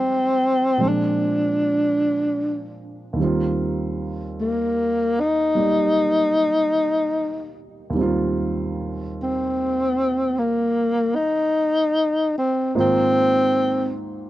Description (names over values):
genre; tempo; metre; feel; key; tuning
jazz ballad; 50 BPM; 4/4; swing 67% on 8ths; Eb major; A4 = 440 Hz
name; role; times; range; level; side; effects
breathy tenor saxophone; melody; 0.0-13.9 s; Bb3 to Eb4; -19 LUFS; left 1 dB; none
warm concert grand piano; accompaniment; 0.0-14.3 s; Eb2 to D5; -25 LUFS; right 2 dB; none
room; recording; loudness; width
little or no reverb; dry, close 1970s-style studio recording; -19 LUFS; side -15 dB against mid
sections
0.0-12.8 A section; 12.8-14.3 B section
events
none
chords
0.0 Fm7; 0.8 Bb9; 3.2 Eb6; 12.8 Ab6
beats
0.80 1.99 | 3.18 4.37 5.56 6.75 | 7.95 9.14 10.34 11.55 | 12.76 13.96